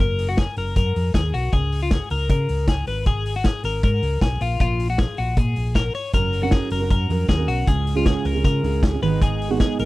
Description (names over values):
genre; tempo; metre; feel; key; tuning
jangly indie pop; 156 BPM; 4/4; straight; F# major; A4 = 440 Hz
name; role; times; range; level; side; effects
twelve-string electric guitar; arpeggios; 0.0-9.9 s; E#4 to C#5; -26 LUFS; left 4 dB; tape echo
hollow-body short-scale fingered electric bass; bass; 0.0-9.9 s; F#1 to C#3; -23 LUFS; equal; none
vintage drum kit; drums; 0.2-9.9 s; hi-hat, kick drum, snare drum; -22 LUFS; equal; none
fingerpicked steel-string acoustic guitar; accompaniment; 6.1-9.9 s; G#2 to A#4; -24 LUFS; right 5 dB; none
room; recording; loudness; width
little or no reverb; none; -18 LUFS; side -18 dB against mid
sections
0.0-9.9 A section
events
none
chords
0.0 F#; 1.5 C#5; 2.9 G#m; 4.4 A#5; 6.1 F#; 7.7 C#; 9.0 G#m